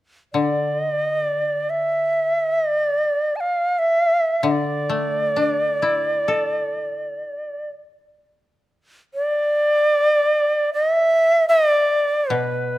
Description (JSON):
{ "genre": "japanese traditional, Japanese chamber music", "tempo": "free time", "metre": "none", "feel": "none", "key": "unclear", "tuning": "A4 = 441 Hz", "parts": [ { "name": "breathy bright shakuhachi", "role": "melody", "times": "0.3-12.8 s", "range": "B4 to A5", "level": "-18 LUFS", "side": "equal", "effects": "none" }, { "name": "koto", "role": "accompaniment", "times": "0.3-8.1, 12.3-12.8 s", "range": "B2 to A4", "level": "-25 LUFS", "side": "left 4 dB", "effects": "none" } ], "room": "light reverb", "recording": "close, detailed microphones", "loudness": "-17 LUFS", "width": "side -16 dB against mid", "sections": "0.0-12.8 A section", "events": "none", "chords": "none" }